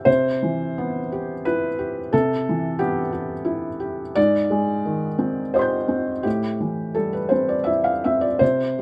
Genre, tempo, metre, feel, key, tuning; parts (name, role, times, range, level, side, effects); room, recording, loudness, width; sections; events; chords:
neoclassical minimalist piano; 86 BPM; 3/4; uneven beats, rubato; C major; A4 = 440 Hz
felt-muted upright piano; solo; 0.0-8.8 s; Ab2 to G6; -22 LUFS; equal
light reverb; -22 LUFS; mono
0.1-8.8 A section
0.1 Cmaj7; 4.2 Abmaj7; 6.2 Am7